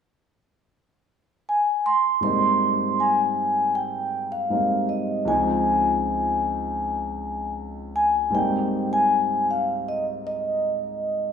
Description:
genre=soul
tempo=79 BPM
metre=4/4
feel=straight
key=Ab major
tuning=A4 = 440 Hz
part: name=vibraphone with soft mallets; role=melody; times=1.5-11.3 s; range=Eb5 to C6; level=-22 LUFS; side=equal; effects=none
part: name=dark grand piano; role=accompaniment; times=2.2-11.3 s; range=Db2 to Eb4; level=-27 LUFS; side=left 1 dB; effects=none
room=wet large studio reverb, RT60 1.2 s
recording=band playing live in one room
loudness=-21 LUFS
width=side -7 dB against mid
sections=0.0-2.2 A section; 2.2-8.3 B section; 8.3-11.3 C section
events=none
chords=0.0 N.C.; 2.2 Abmaj7; 5.3 Dbmaj9; 8.3 Abmaj7

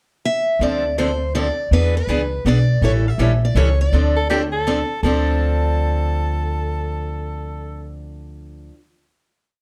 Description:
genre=acoustic string swing (jazz manouche)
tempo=163 BPM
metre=3/4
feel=swing 63% on 8ths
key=D minor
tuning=A4 = 441 Hz
part: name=picked steel-string acoustic guitar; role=melody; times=0.3-4.6 s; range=B4 to E5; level=-25 LUFS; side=equal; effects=none
part: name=picked steel-string acoustic guitar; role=accompaniment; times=0.6-8.8 s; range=D3 to A4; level=-25 LUFS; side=equal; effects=none
part: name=upright bass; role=bass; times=0.6-8.7 s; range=A1 to E2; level=-22 LUFS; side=equal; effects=none
part: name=bright soprano saxophone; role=second line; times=4.2-8.0 s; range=G4 to A4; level=-28 LUFS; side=equal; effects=none
room=moderate club reverb, RT60 0.7 s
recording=dark, warm production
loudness=-19 LUFS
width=mono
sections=0.0-0.6 pickup bar; 0.6-5.0 A section; 5.0-7.2 final chord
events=none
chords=0.0 N.C.; 0.6 Dm7; 1.7 E7; 2.8 A7; 3.9 Dm7

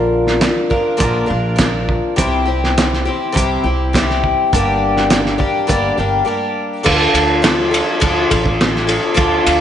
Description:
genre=folk rock and heartland rock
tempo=103 BPM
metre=4/4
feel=straight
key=D minor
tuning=A4 = 439 Hz
part: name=picked twelve-string acoustic guitar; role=accompaniment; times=0.0-9.6 s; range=G2 to Bb4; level=-16 LUFS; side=left 2 dB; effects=slapback echo
part: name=upright bass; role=bass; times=0.0-9.6 s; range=G1 to D2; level=-21 LUFS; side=right 1 dB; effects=none
part: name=cloth-damped thuddy drum kit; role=drums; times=0.3-9.6 s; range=crash cymbal, hi-hat, kick drum, ride cymbal, snare drum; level=-16 LUFS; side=right 1 dB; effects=none
room=moderate scoring stage reverb, RT60 2.0 s, small room ambience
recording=big arena sound, nothing above 10.9 kHz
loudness=-13 LUFS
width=side -10 dB against mid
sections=0.0-6.8 A section; 6.8-9.6 B section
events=break 6.3-6.8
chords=0.0 Bb; 2.2 C; 4.5 Gm; 6.8 Dm

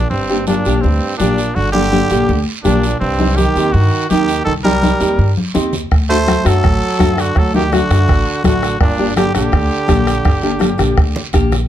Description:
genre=latin, cumbia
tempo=166 BPM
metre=4/4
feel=straight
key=G harmonic minor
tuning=A4 = 440 Hz
part: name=growling trumpet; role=melody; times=0.0-11.3 s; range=C4 to C5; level=-20 LUFS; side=equal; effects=none
part: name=bright trombone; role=second line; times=0.0-11.3 s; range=G2 to A3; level=-21 LUFS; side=right 5 dB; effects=none
part: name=upright bass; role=bass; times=0.0-11.6 s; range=G1 to G2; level=-17 LUFS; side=equal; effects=none
part: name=guiro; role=percussion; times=0.1-11.7 s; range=none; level=-29 LUFS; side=right 5 dB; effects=none
part: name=nylon-string guitar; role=accompaniment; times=0.3-11.5 s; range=A3 to G4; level=-18 LUFS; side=left 2 dB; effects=none
part: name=congas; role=percussion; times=0.5-11.6 s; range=none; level=-21 LUFS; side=left 2 dB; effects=none
part: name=bombo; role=percussion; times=5.9-11.7 s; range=none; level=-16 LUFS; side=equal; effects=none
room=light reverb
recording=dark, warm production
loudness=-12 LUFS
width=side -11 dB against mid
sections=0.1-11.7 A section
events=drum fill 5.4-5.9, 10.6-11.7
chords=0.1 Gm; 3.0 Cm; 5.9 D; 8.8 Gm

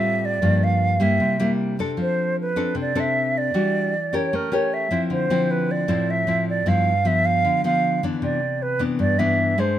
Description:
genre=bossa nova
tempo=154 BPM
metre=4/4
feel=straight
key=unclear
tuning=A4 = 441 Hz
part: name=hollow concert flute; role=melody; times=0.0-9.8 s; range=Bb4 to F5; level=-22 LUFS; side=right 2 dB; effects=none
part: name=nylon-string guitar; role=accompaniment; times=0.0-9.8 s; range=G2 to Bb4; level=-21 LUFS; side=left 1 dB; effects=none
room=light reverb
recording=minimal, uncompressed stereo recording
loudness=-19 LUFS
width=side -11 dB against mid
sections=0.0-9.8 A section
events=none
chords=0.4 Gm7; 1.2 C7; 2.0 F6; 3.5 Em9; 4.3 A7b9; 5.1 Dm9; 6.7 G6; 8.2 Cmaj9

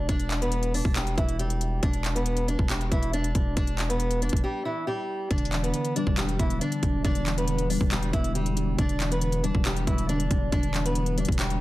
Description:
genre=hip hop, trap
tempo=138 BPM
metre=4/4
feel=half-time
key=E minor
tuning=A4 = 435 Hz
part: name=fingerpicked swing-style acoustic guitar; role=melody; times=0.0-11.6 s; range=E3 to D5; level=-30 LUFS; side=equal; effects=none
part: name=distorted 808-style bass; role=bass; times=0.0-11.6 s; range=E1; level=-28 LUFS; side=equal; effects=distortion
part: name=trap drum kit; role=drums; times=0.1-11.6 s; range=handclaps, hi-hat, kick drum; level=-27 LUFS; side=equal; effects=none
part: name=warbly lo-fi synth keys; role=accompaniment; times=5.3-11.6 s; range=D3 to D4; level=-30 LUFS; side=left 1 dB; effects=chorus
room=little or no reverb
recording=dense, heavily limited modern master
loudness=-24 LUFS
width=side -17 dB against mid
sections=0.0-11.6 A section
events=break 4.4-5.3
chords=0.0 Em7

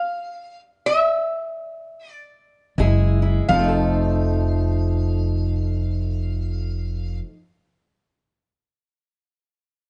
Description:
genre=acoustic country blues, solo or duo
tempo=free time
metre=none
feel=none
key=F mixolydian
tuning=A4 = 440 Hz
part: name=lap resonator guitar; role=melody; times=0.0-7.2 s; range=E5 to F5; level=-24 LUFS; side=equal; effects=plate reverb
part: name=fingerpicked steel-string acoustic guitar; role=accompaniment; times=2.8-7.4 s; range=F2 to A4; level=-28 LUFS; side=equal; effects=none
part: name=upright bass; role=bass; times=2.8-7.2 s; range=F1 to Gb1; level=-23 LUFS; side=equal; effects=none
room=light reverb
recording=nothing above 10.4 kHz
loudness=-22 LUFS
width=mono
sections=0.0-3.5 A section; 3.5-6.4 B section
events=slowing down 0.0-3.5; stop 0.0-2.8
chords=0.0 N.C.; 2.8 Gbsus2; 3.5 F7

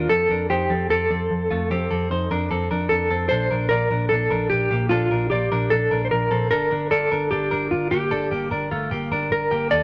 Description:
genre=indie pop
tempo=150 BPM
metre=4/4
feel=straight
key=unclear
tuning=A4 = 442 Hz
part: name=mellow electric guitar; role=melody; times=0.0-9.8 s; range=F4 to D5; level=-24 LUFS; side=equal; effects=tremolo
part: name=direct-recorded clean electric guitar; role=arpeggios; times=0.0-9.8 s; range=A3 to D5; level=-28 LUFS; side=equal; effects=spring reverb
part: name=vintage muted picked electric bass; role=bass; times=0.0-9.8 s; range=G1 to F2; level=-28 LUFS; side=equal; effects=none
room=moderate studio reverb, RT60 0.6 s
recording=none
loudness=-22 LUFS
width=mono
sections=0.0-9.8 A section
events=none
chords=0.1 F7; 3.3 Bbmaj7; 6.5 Gm7

